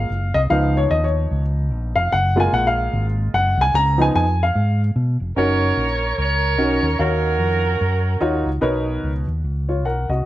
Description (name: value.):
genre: uptempo gospel.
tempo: 148 BPM.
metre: 4/4.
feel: swing 59% on 8ths.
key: F# major.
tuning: A4 = 442 Hz.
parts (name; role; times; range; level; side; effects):
warm upright piano; accompaniment; 0.0-10.3 s; B2 to A#5; -20 LUFS; left 1 dB; none.
fingered electric bass; bass; 0.0-10.2 s; E#1 to B2; -20 LUFS; equal; none.
mellow saxophone section; melody; 5.4-8.5 s; C#4 to C#5; -21 LUFS; right 3 dB; none.
room: light reverb.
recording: none.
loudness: -17 LUFS.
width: side -14 dB against mid.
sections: 0.0-5.4 A section; 5.4-10.3 B section.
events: upright piano solo 0.0-5.4.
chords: 0.0 F#maj7; 0.5 C#7; 2.1 F#maj7; 3.7 C#7; 5.4 F#6; 7.0 D#m9; 8.6 Bmaj9.